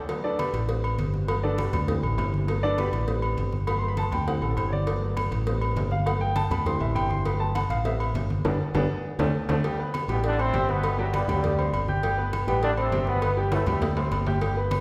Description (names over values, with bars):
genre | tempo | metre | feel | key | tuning
latin, salsa | 201 BPM | 4/4 | straight | G major | A4 = 440 Hz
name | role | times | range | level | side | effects
clear grand piano | accompaniment | 0.1-14.8 s | E3 to G6 | -31 LUFS | equal | none
agogo bells and timbales | percussion | 0.1-14.8 s | none | -35 LUFS | equal | none
congas | percussion | 0.1-14.8 s | none | -35 LUFS | equal | none
cowbell | percussion | 0.1-14.8 s | none | -38 LUFS | equal | none
fingered electric bass | bass | 0.5-14.8 s | G1 to D2 | -30 LUFS | equal | none
bright trombone section | melody | 10.1-14.0 s | F#2 to D4 | -31 LUFS | equal | none
room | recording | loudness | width
wet scoring stage reverb, RT60 1.7 s | recorded in a church or concert hall | -26 LUFS | mono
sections
0.1-9.6 A section; 9.6-14.8 B section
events
grand piano solo 0.1-9.6; band accent 8.5-9.6; drum fill 8.9-9.6, 13.5-14.4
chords
0.1 Gmaj9; 0.7 Am9; 1.3 Gmaj9; 1.9 D9sus4; 2.5 Gmaj9; 3.1 Am9; 3.7 Gmaj9; 4.3 D9sus4; 4.9 Gmaj9; 5.5 Am9; 6.1 Gmaj9; 6.7 D9sus4; 7.3 Gmaj9; 7.9 Am9; 8.5 G; 9.0 D5; 9.6 Gadd9; 10.2 Am9; 10.8 Gmaj7; 11.4 D7sus4; 12.0 Gadd9; 12.6 Am9; 13.2 Gadd9; 13.8 D7sus4